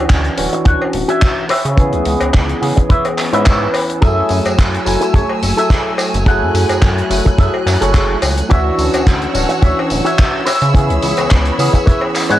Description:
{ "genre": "nu-disco, nu disco", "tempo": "107 BPM", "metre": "4/4", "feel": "swing 54% on 16ths", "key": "F# minor", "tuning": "A4 = 442 Hz", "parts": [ { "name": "barky tine electric piano", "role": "accompaniment", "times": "0.0-12.4 s", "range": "E3 to G#5", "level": "-18 LUFS", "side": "equal", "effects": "phaser, low-pass filter, tape echo" }, { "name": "electric guitar with an envelope filter", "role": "riff", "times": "0.0-12.4 s", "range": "F#4 to F#5", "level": "-19 LUFS", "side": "equal", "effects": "analog chorus, tape echo" }, { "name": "chorused synth bass", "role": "bass", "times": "0.0-12.4 s", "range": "D1 to C#3", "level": "-18 LUFS", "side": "equal", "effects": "none" }, { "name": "damped 70s drum kit", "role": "drums", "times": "0.1-12.4 s", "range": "handclaps, hi-hat, tambourine", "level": "-21 LUFS", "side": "equal", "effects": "none" }, { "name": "kick drum", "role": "drums", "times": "0.1-12.0 s", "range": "none", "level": "-11 LUFS", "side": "equal", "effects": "none" }, { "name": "cowbell", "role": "percussion", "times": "0.8-12.1 s", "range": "none", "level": "-22 LUFS", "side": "left 2 dB", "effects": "none" }, { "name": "rich studio violin section", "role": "sustained chords", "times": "4.0-12.4 s", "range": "A3 to F#6", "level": "-24 LUFS", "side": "right 1 dB", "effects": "sidechain pumping" } ], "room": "little or no reverb", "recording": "dry, gritty hardware recording, cassette tape", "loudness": "-12 LUFS", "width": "side -13 dB against mid", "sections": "0.0-12.4 A section", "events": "none", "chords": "0.0 Dmaj9; 1.5 C#m7; 4.0 F#m9; 8.5 Dmaj9; 10.5 C#m7" }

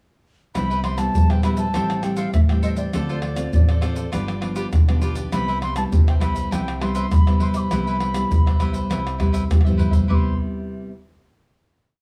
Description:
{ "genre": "samba and choro", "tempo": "100 BPM", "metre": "4/4", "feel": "straight", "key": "C major", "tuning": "A4 = 439 Hz", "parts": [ { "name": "wooden flute", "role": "melody", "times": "0.5-10.4 s", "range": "D5 to D6", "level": "-31 LUFS", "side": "equal", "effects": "plate reverb" }, { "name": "cavaquinho", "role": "accompaniment", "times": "0.5-10.3 s", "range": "E4 to G5", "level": "-35 LUFS", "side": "equal", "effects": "none" }, { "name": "nylon-string guitar", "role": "accompaniment", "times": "0.6-10.9 s", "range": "G2 to A4", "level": "-28 LUFS", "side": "equal", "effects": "none" }, { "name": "upright bass", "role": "bass", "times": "0.6-10.4 s", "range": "G1 to C3", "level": "-29 LUFS", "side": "equal", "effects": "none" }, { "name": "tube shaker, surdo, pandeiro and tamborim", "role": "percussion", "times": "0.6-10.2 s", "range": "none", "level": "-22 LUFS", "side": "equal", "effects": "none" } ], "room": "moderate studio reverb, RT60 0.8 s", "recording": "none", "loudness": "-20 LUFS", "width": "mono", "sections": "0.6-10.1 A section; 10.1-12.0 final chord", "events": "drum fill 9.5-10.1", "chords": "0.6 Cmaj7; 1.7 Am7; 2.9 Dm7; 4.1 G7; 5.3 Cmaj7" }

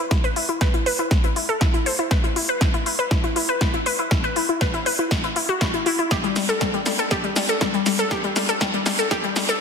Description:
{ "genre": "progressive house", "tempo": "120 BPM", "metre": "4/4", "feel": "straight", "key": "E minor", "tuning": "A4 = 441 Hz", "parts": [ { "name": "glassy wavetable pluck", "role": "arpeggios", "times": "0.0-9.6 s", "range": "G3 to C5", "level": "-22 LUFS", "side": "left 2 dB", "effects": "chorus, sidechain pumping, ping-pong delay" }, { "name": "big-room dance drum kit", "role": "drums", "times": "0.1-9.6 s", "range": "hi-hat, shaker, snare drum", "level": "-24 LUFS", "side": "equal", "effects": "high-pass filter on hats, high-pass filter on snare, high-pass filter on perc, high-pass filter on room" }, { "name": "electronic kick drum", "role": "drums", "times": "0.1-9.2 s", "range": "none", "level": "-22 LUFS", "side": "equal", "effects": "none" } ], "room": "moderate digital room reverb, RT60 1.1 s, digital ambience", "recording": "dense, heavily limited modern master, high-pass filter", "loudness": "-19 LUFS", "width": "side -6 dB against mid", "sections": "0.0-9.6 A section", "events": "build-up 0.0-9.6; drum fill 0.0-9.6; filter sweep 0.0-9.6", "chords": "none" }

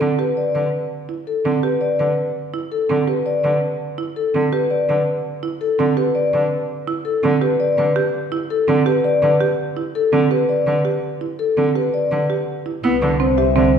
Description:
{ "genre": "classical, minimalist pattern music", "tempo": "166 BPM", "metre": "4/4", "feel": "straight", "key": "A minor", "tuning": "A4 = 441 Hz", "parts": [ { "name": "vibraphone with soft mallets", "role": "melody", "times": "0.0-13.8 s", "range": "A4 to E5", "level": "-19 LUFS", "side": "left 3 dB", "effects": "none" }, { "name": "rich cello", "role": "accompaniment", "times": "0.0-13.7 s", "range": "D3 to B3", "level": "-23 LUFS", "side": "right 2 dB", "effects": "none" }, { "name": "marimba with medium mallets", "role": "arpeggios", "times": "0.0-13.8 s", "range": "C4 to G4", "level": "-23 LUFS", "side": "right 7 dB", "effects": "none" }, { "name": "warm double bass", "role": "bass", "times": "12.8-13.8 s", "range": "C2", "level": "-21 LUFS", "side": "right 2 dB", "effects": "none" } ], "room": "wet scoring stage reverb, RT60 1.7 s", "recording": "heard from further back in the room", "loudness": "-17 LUFS", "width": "side -7 dB against mid", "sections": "0.0-12.8 A section", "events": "none", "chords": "0.0 Am9 (rootless); 12.8 Cmaj7" }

